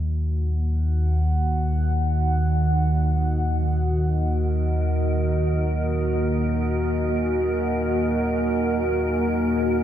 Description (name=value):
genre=dark ambient drone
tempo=free time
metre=none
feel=none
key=unclear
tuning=A4 = 440 Hz
part: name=dark analog pad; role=sustained chords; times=0.0-9.8 s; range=Bb3 to Ab5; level=-25 LUFS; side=equal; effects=chorus, phaser
part: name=deep rumbling drone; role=drone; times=0.0-9.8 s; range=Eb2 to Eb3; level=-22 LUFS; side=equal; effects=built-in reverb
part: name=icy glass pad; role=texture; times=4.5-9.8 s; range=Bb4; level=-30 LUFS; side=right 3 dB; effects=chorus, built-in reverb
room=wet huge ambient reverb, RT60 8.5 s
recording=dark, warm production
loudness=-20 LUFS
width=side -10 dB against mid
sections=0.0-9.8 A section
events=none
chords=0.0 Ebm